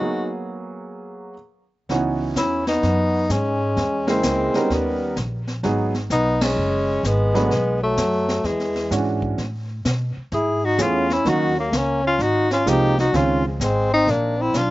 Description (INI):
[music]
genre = jazz, small-group swing and bop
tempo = 128 BPM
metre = 4/4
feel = swing 66% on 8ths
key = C# minor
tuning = A4 = 438 Hz
[part]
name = warm tenor saxophone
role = melody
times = 0.0-14.7 s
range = G#3 to G#4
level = -22 LUFS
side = left 2 dB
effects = none
[part]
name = clear trombone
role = second line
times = 0.0-14.7 s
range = E3 to E4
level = -25 LUFS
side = right 2 dB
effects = slapback echo
[part]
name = warm concert grand piano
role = accompaniment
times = 0.0-13.4 s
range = C#3 to B4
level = -23 LUFS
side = right 3 dB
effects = none
[part]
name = upright bass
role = bass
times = 1.9-14.7 s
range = F#1 to B2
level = -25 LUFS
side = equal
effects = none
[part]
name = jazz brush drum kit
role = drums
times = 1.9-14.7 s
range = brushed snare drum, hi-hat, kick drum, ride cymbal, snare drum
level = -27 LUFS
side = left 1 dB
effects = none
[sound]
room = little or no reverb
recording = recorded outdoors, with no room sound, nothing above 7.8 kHz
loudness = -18 LUFS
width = side -17 dB against mid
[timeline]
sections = 0.0-1.9 A section; 1.9-14.7 B section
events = break 0.0-1.9; band accent 6.3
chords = 0.0 G#m9; 1.9 C#m11; 3.8 A#m7b5; 4.7 D#7b13; 5.6 G#m7; 7.5 B5; 8.4 E13; 9.4 Amaj9; 11.3 D#m7; 12.2 G#69; 13.1 C#maj9; 14.1 F#7b13/A# (rootless)